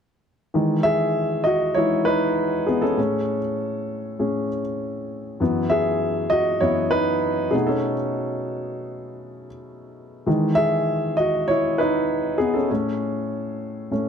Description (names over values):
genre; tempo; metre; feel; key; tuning
soul; 99 BPM; 4/4; straight; E major; A4 = 440 Hz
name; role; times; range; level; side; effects
warm grand piano; solo; 0.5-14.1 s; F#2 to E5; -20 LUFS; equal; none
room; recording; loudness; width
moderate echo chamber reverb, RT60 1.9 s; none; -20 LUFS; side -7 dB against mid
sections
0.5-14.1 A section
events
grand piano solo 0.5-14.1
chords
0.5 Emaj7; 3.0 Amaj7; 5.4 F#9sus4; 7.5 B9; 10.3 Emaj7; 12.7 Amaj7